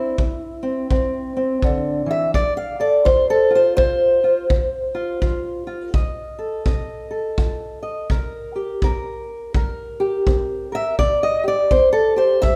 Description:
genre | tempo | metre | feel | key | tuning
acoustic country blues, solo or duo | 83 BPM | 4/4 | swing 60% on 8ths | C mixolydian | A4 = 440 Hz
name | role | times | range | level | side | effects
fingerpicked old ladder-braced acoustic guitar | melody | 0.0-12.6 s | G2 to F5 | -21 LUFS | equal | none
kick drum | drums | 0.2-12.6 s | none | -24 LUFS | equal | none
room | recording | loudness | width
light reverb | faint mains hum | -20 LUFS | mono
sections
0.0-12.6 A section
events
steel-string acoustic guitar solo 0.0-12.6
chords
0.0 C; 2.3 F7; 8.1 C7(no3)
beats
0.19 0.91 1.63 | 2.35 3.06 3.78 4.50 | 5.22 5.94 6.66 7.38 | 8.10 8.82 9.54 10.27 | 10.99 11.71 12.43

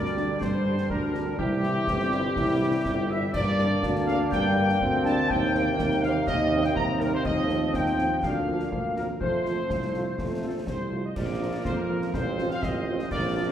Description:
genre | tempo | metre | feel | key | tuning
military-style march for wind band | 123 BPM | 2/4 | straight | Bb major from 3.3 s | A4 = 440 Hz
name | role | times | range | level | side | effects
mellow trumpet section | melody | 0.0-13.5 s | G4 to Bb5 | -32 LUFS | equal | none
mellow flute section | second line | 0.0-10.9 s | G4 to Bb5 | -32 LUFS | left 2 dB | none
warm euphonium | second line | 0.0-11.1 s | F3 to E4 | -31 LUFS | left 1 dB | none
warm woodwind section | second line | 0.0-13.5 s | F4 to Bb5 | -35 LUFS | equal | none
bright trombone section | sustained chords | 0.0-13.5 s | C3 to C4 | -34 LUFS | right 1 dB | none
warm tuba | bass | 0.0-13.5 s | G1 to G2 | -28 LUFS | right 1 dB | none
concert snare drum, concert bass drum and clash cymbals | drums | 0.1-13.5 s | none | -34 LUFS | equal | none
dark French horn section | accompaniment | 0.2-13.5 s | F3 to F4 | -36 LUFS | left 1 dB | none
room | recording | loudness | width
wet recital hall reverb, RT60 1.7 s | heard from further back in the room | -23 LUFS | side -10 dB against mid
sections
0.0-11.2 A section; 11.2-13.5 B section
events
none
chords
0.0 Gm; 1.4 C; 3.3 Gm; 5.3 Cm7/Eb; 7.3 F7/Eb; 8.2 Bb/D; 9.2 F; 11.2 Bb; 12.1 F/A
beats
| 0.41 0.90 | 1.39 1.88 | 2.37 2.86 | 3.35 3.83 | 4.32 4.81 | 5.30 5.79 | 6.28 6.77 | 7.25 7.74 | 8.23 8.72 | 9.21 9.70 | 10.19 10.67 | 11.16 11.65 | 12.14 12.63 | 13.11

